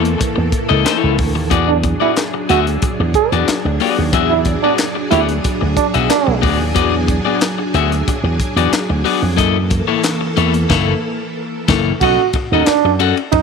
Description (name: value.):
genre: funk.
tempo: 91 BPM.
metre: 4/4.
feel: straight.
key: unclear.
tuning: A4 = 440 Hz.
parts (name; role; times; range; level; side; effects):
electric guitar at the edge of break-up; accompaniment; 0.0-13.4 s; A#3 to F#5; -18 LUFS; left 13 dB; none.
string machine, violins; sustained chords; 0.0-12.0 s; E3 to A4; -22 LUFS; right 1 dB; ensemble chorus.
slap bass with an envelope filter; bass; 0.0-13.4 s; F#1 to F#2; -18 LUFS; right 2 dB; none.
crisp fusion drum kit; drums; 0.1-13.4 s; crash cymbal, handclaps, hi-hat, kick drum, ride cymbal, snare drum; -20 LUFS; left 1 dB; none.
mellow trombone; second line; 1.7-6.4, 12.0-13.4 s; D4 to G#4; -17 LUFS; right 13 dB; slapback echo.
room: light reverb, small room ambience.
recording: 1960s-style stereo with parts hard left and right.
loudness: -13 LUFS.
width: side -5 dB against mid.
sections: 0.0-12.0 A section; 12.0-13.4 B section.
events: band accent 10.7-12.0.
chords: 0.0 F#7#9 (rootless); 1.5 E9; 9.4 F#7#9; 12.0 B9 (rootless).